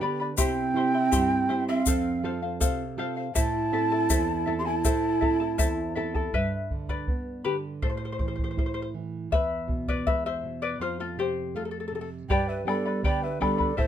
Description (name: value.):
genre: andean folk, Andean ensemble.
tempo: 81 BPM.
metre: 2/4.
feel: straight.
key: A minor.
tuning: A4 = 440 Hz.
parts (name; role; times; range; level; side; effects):
charango; accompaniment; 0.0-13.9 s; E4 to C6; -30 LUFS; left 5 dB; none.
nylon-string guitar; accompaniment; 0.0-13.9 s; E2 to A4; -32 LUFS; right 3 dB; none.
mellow large quena; melody; 0.4-6.0, 12.3-13.9 s; D5 to C6; -30 LUFS; right 1 dB; none.
breathy bright large pan pipes; second line; 0.4-6.0, 12.3-13.9 s; C4 to D5; -28 LUFS; right 3 dB; none.
bombo; percussion; 0.4-13.9 s; none; -29 LUFS; equal; none.
egg shaker; percussion; 0.4-5.8 s; none; -31 LUFS; left 8 dB; none.
room: moderate studio reverb, RT60 0.6 s.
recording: close, detailed microphones.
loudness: -25 LUFS.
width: side -10 dB against mid.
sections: 0.0-6.3 A section; 6.3-12.3 B section; 12.3-13.9 C section.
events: charango solo 6.3-12.3; break 10.8-12.3.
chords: 0.4 C; 1.9 F; 3.4 Am; 6.3 G; 7.8 A5; 9.3 E; 10.8 F; 12.3 G.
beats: | 0.38 1.12 | 1.87 2.61 | 3.35 4.10 | 4.84 5.59 | 6.33 7.08 | 7.83 8.57 | 9.32 10.06 | 10.81 11.55 | 12.30 13.04 | 13.78.